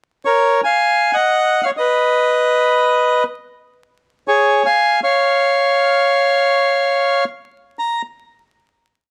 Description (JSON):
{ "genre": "tango", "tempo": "120 BPM", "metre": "4/4", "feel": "rubato", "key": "unclear", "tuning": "A4 = 440 Hz", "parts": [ { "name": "bandoneon", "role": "solo", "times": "0.3-8.0 s", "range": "G#4 to A#5", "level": "-16 LUFS", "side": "equal", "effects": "none" } ], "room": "light reverb", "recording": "close, detailed microphones, vinyl crackle", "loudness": "-16 LUFS", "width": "mono", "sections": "0.0-7.8 A section; 7.8-9.1 final note", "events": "none", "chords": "0.0 F#; 1.8 N.C.; 3.8 C#; 5.8 N.C." }